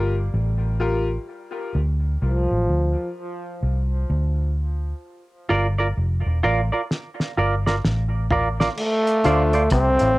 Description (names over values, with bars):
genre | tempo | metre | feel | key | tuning
dub reggae | 64 BPM | 4/4 | swing 62% on 16ths | D minor | A4 = 440 Hz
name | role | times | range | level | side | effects
clear trombone | melody | 0.0-3.1, 8.8-10.2 s | F3 to C4 | -23 LUFS | equal | dub echo, plate reverb
bright grand piano | stabs | 0.0-1.1, 9.2-9.5 s | D4 to C5 | -28 LUFS | left 3 dB | cassette tape, dub echo
vintage muted fingered electric bass | bass | 0.0-10.2 s | E1 to D2 | -21 LUFS | equal | none
clean electric guitar | accompaniment | 5.5-9.6 s | F4 to D5 | -24 LUFS | right 2 dB | phaser, cassette tape, dub echo, plate reverb
cloth-damped thuddy drum kit | drums | 6.9-10.2 s | crash cymbal, hi-hat, kick drum, rim click, snare drum, toms | -25 LUFS | equal | cassette tape
mellow clav | riff | 9.2-10.1 s | A2 to D3 | -27 LUFS | left 4 dB | none
room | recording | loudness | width
light reverb | home recording on cassette | -19 LUFS | side -20 dB against mid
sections
0.0-8.8 A section; 8.8-10.2 B section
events
break 0.0-5.0; drum fill 6.9-8.8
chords
0.0 Gm7; 1.3 Dm7; 5.0 Gm7; 8.8 Dm7